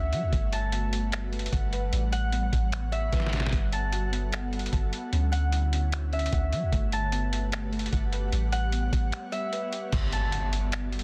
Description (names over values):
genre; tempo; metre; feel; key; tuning
hip hop, atmospheric cloud-rap; 150 BPM; 4/4; half-time; G lydian; A4 = 438 Hz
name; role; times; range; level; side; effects
Celtic harp; melody; 0.0-11.0 s; E5 to A5; -37 LUFS; equal; tape echo
ethereal airy pad; sustained chords; 0.0-11.0 s; D3 to F#5; -40 LUFS; equal; ensemble chorus, built-in reverb, phaser
muted felt-like synth keys; arpeggios; 0.0-9.9 s; G3 to A5; -41 LUFS; equal; chorus, tape echo
soft 808-style bass; bass; 0.0-11.0 s; G1 to F#3; -30 LUFS; equal; none
lo-fi sampler-style drum kit; drums; 0.1-11.0 s; crash cymbal, finger snaps, hi-hat, kick drum, snare drum; -33 LUFS; equal; soft clipping on snare
impact; sound effects; 9.9-11.0 s; none; -39 LUFS; equal; none
room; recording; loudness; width
little or no reverb; dense, heavily limited modern master; -28 LUFS; mono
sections
0.0-9.9 A section; 9.9-11.0 B section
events
drum fill 3.1-3.5; break 9.1-9.9; impact 9.9-11.0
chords
0.3 Gmaj9; 1.9 A13; 3.5 Gmaj9; 5.1 Dmaj9; 6.7 Gmaj9; 8.3 A13; 9.9 Gmaj9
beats
| 0.33 0.72 1.12 1.52 | 1.93 2.33 2.73 3.12 | 3.52 3.92 4.33 4.72 | 5.12 5.53 5.92 6.33 | 6.72 7.12 7.53 7.92 | 8.32 8.72 9.12 9.53 | 9.93 10.32 10.72